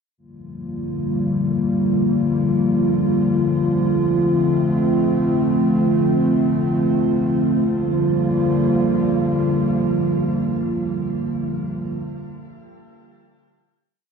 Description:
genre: hip hop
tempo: free time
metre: none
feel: none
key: G minor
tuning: A4 = 435 Hz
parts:
  - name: dark analog pad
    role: solo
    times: 0.2-12.0 s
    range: D3 to F4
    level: -17 LUFS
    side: equal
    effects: chorus, digital delay
room: moderate shimmer reverb, RT60 4.3 s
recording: none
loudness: -17 LUFS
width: side -6 dB against mid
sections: 0.2-7.7 breakdown; 7.7-11.4 final chord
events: none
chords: 0.2 Gm7; 3.9 F6; 7.7 Gm7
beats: free time

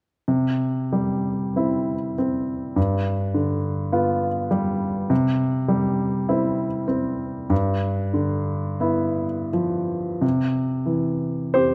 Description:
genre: classical, romantic nocturne for solo piano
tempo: 40-52 BPM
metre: 4/4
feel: rubato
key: C major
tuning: A4 = 439 Hz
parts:
  - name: warm baby grand piano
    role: solo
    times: 0.3-11.7 s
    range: G2 to C5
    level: -23 LUFS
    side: equal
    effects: none
room: moderate recital hall reverb, RT60 1.8 s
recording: close, detailed microphones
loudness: -23 LUFS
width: mono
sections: 0.3-10.2 A section; 10.2-11.7 B section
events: none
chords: 0.3 C; 2.8 G7; 5.1 C; 7.5 G6; 10.2 C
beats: | 0.28 1.56 2.77 3.93 | 5.11 6.29 7.51 8.82 | 10.23 11.57

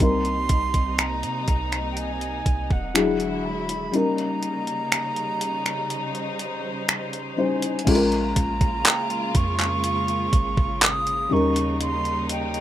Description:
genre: contemporary R&B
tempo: 61 BPM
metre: 4/4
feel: straight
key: Bb dorian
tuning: A4 = 438 Hz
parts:
  - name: silver concert flute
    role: melody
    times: 0.0-12.6 s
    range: Gb5 to Eb6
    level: -28 LUFS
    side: right 2 dB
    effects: none
  - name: felt-muted upright piano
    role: accompaniment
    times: 0.0-12.6 s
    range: F#3 to C5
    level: -24 LUFS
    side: left 3 dB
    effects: none
  - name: warm studio string section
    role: sustained chords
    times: 0.0-12.6 s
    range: C3 to C5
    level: -30 LUFS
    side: equal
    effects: none
  - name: clean 808-style bass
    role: bass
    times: 0.0-12.6 s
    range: E1 to C3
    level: -30 LUFS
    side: right 1 dB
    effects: none
  - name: crisp 8-bit digital drum machine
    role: drums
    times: 0.0-12.6 s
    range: crash cymbal, finger snaps, handclaps, hi-hat, kick drum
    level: -22 LUFS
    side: right 1 dB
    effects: none
  - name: mallet-like synth pluck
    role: texture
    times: 8.9-10.2 s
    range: G5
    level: -37 LUFS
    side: right 4 dB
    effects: none
room: digital ambience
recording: rough home demo mix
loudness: -21 LUFS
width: side -12 dB against mid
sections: 0.0-7.9 A section; 7.9-12.6 B section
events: break 3.9-7.9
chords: 0.0 Cm7; 3.0 E9; 3.9 Eb7; 7.9 Bbm7; 11.3 Eb7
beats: | 0.00 0.99 1.97 2.95 | 3.94 4.92 5.90 6.89 | 7.87 8.86 9.84 10.82 | 11.80

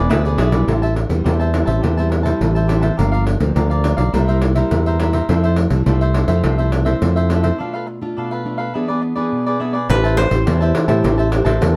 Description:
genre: samba and choro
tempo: 104 BPM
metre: 4/4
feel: straight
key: A minor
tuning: A4 = 439 Hz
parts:
  - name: koto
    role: melody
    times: 0.0-0.8, 9.9-11.8 s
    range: A4 to D5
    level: -27 LUFS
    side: equal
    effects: none
  - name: cavaquinho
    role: accompaniment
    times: 0.0-11.7 s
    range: D4 to A5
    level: -26 LUFS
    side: equal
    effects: none
  - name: nylon-string guitar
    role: accompaniment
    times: 0.0-11.8 s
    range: G2 to C5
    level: -24 LUFS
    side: equal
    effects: none
  - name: modern bright fingered electric bass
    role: bass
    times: 0.0-11.8 s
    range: G1 to A2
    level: -19 LUFS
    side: equal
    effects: none
  - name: pandeiro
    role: percussion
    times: 0.1-11.8 s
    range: none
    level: -24 LUFS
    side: equal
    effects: none
room: light reverb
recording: none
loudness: -17 LUFS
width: mono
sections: 0.7-9.9 A section; 9.9-11.8 B section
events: break 7.6-9.9; koto solo 9.9-11.8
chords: 0.0 E7; 0.7 Am7; 3.0 Gm7; 4.1 C7; 5.3 Fmaj7; 7.6 Bm7b5; 8.7 E7; 9.9 Am7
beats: 0.10 | 0.68 1.25 1.83 2.41 | 2.98 3.56 4.14 4.71 | 5.29 5.87 6.44 7.02 | 7.59 8.17 8.74 9.32 | 9.89 10.47 11.04 11.62

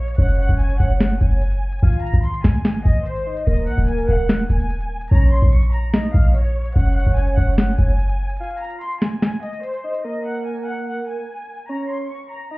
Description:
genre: hip hop, trap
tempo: 146 BPM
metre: 4/4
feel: half-time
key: unclear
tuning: A4 = 440 Hz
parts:
  - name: warm studio violin section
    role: melody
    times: 0.0-12.6 s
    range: C5 to Db6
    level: -30 LUFS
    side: equal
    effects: low-pass filter
  - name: short 808-style bass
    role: bass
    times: 0.0-8.4 s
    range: Db1 to Bb1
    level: -16 LUFS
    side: equal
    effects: none
  - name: trap drum kit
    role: drums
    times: 0.1-10.0 s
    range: hi-hat, snare drum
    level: -21 LUFS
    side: equal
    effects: overdrive
  - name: soft octave-layered synth lead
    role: second line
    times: 0.2-12.6 s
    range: Bb4 to F5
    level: -27 LUFS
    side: right 1 dB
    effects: chorus, phaser, digital delay
room: digital ambience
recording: heard muffled through a wall, club reverb, EQ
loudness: -17 LUFS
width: side -22 dB against mid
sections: 0.0-10.0 A section; 10.0-12.6 B section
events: break 8.4-10.0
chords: 0.2 Gbsus2; 1.8 Ab; 3.5 Eb5; 5.1 Bbm; 6.8 Gbsus2; 8.4 N.C.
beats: | 0.18 0.59 1.00 1.42 | 1.83 2.24 2.65 3.06 | 3.47 3.88 4.29 4.70 | 5.11 5.53 5.94 6.35 | 6.76 7.17 7.58 7.99 | 8.40 8.81 9.22 9.63 | 10.05 10.46 10.87 11.28 | 11.69 12.10 12.51

